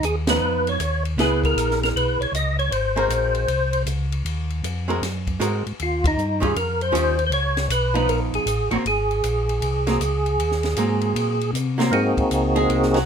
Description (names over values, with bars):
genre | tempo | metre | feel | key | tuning
soul jazz organ trio | 156 BPM | 4/4 | swing 65% on 8ths | Ab mixolydian | A4 = 440 Hz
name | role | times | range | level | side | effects
percussive tonewheel organ | melody | 0.0-13.0 s | Bb3 to Eb5 | -22 LUFS | equal | slow rotary speaker, chorus vibrato
mellow tonewheel organ | bass | 0.0-13.1 s | Ab1 to C3 | -24 LUFS | equal | chorus vibrato, slow rotary speaker
compact cocktail drum kit | drums | 0.0-13.0 s | hi-hat, kick drum, ride cymbal, snare drum | -30 LUFS | left 1 dB | none
archtop guitar, miked and amplified | accompaniment | 0.3-13.1 s | Eb3 to Bb4 | -24 LUFS | right 2 dB | none
room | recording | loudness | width
moderate small room reverb, RT60 0.5 s | minimal, uncompressed stereo recording | -19 LUFS | side -7 dB against mid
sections
0.0-11.9 A section; 11.9-13.1 B section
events
band accent 0.2, 6.0; hollow-body jazz guitar solo 11.9-13.1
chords
0.0 Db9; 1.2 Dbm7; 2.7 Ab9; 5.8 Eb9; 7.3 Db9; 8.9 Ab9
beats
0.03 0.42 0.80 | 1.18 1.56 1.95 2.33 | 2.71 3.10 3.48 3.87 | 4.25 4.63 5.01 5.40 | 5.78 6.17 6.55 6.93 | 7.32 7.70 8.08 8.47 | 8.85 9.23 9.62 10.00 | 10.39 10.77 11.15 11.54 | 11.92 12.30 12.69